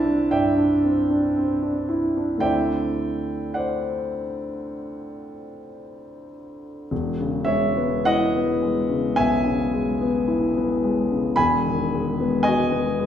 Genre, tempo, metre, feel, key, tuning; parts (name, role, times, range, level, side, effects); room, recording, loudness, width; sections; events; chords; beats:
classical, impressionist solo piano; 55 BPM; 4/4; rubato; A4 = 439 Hz
warm concert grand piano; solo; 0.0-13.1 s; E1 to C6; -20 LUFS; equal
wet recital hall reverb, RT60 1.4 s; heard from further back in the room; -20 LUFS; side -9 dB against mid
0.0-6.9 A section; 6.9-13.1 B section
0.0 Cadd9; 2.5 D9; 6.9 E6; 11.3 G#m7/E
0.33 1.38 | 2.46 3.57 4.70 5.80 | 6.91 8.04 9.15 10.24 | 11.34 12.42